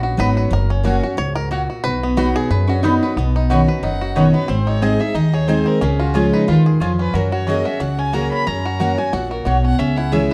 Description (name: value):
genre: bluegrass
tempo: 181 BPM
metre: 4/4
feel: swing 56% on 8ths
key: B major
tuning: A4 = 445 Hz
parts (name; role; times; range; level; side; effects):
- bluegrass banjo; melody; 0.0-10.3 s; B3 to C#5; -28 LUFS; equal; none
- picked steel-string acoustic guitar; accompaniment; 0.0-10.3 s; F#2 to G#4; -20 LUFS; equal; none
- upright bass; bass; 0.0-10.3 s; F#1 to F#2; -23 LUFS; equal; none
- mandolin; stabs; 0.2-10.2 s; A#3 to C#6; -28 LUFS; equal; none
- lap resonator guitar; second line; 2.7-3.1 s; C#4 to D#4; -24 LUFS; equal; none
- clear fiddle; melody; 3.8-10.3 s; D#4 to B5; -28 LUFS; equal; none
room: moderate large studio reverb, RT60 1.0 s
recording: dark, warm production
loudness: -18 LUFS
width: mono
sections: 0.0-3.2 A section; 3.2-10.3 B section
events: five-string banjo solo 0.0-3.2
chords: 0.0 B; 0.5 F#; 1.8 B; 3.2 Badd9; 4.5 G#; 5.8 C#; 7.1 F#add9; 8.5 F#; 9.8 C#m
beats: 0.18 | 0.52 0.85 1.18 1.51 | 1.84 2.17 2.50 2.83 | 3.17 3.50 3.83 4.16 | 4.49 4.82 5.16 5.49 | 5.82 6.15 6.48 6.81 | 7.14 7.47 7.81 8.14 | 8.47 8.80 9.13 9.46 | 9.79 10.12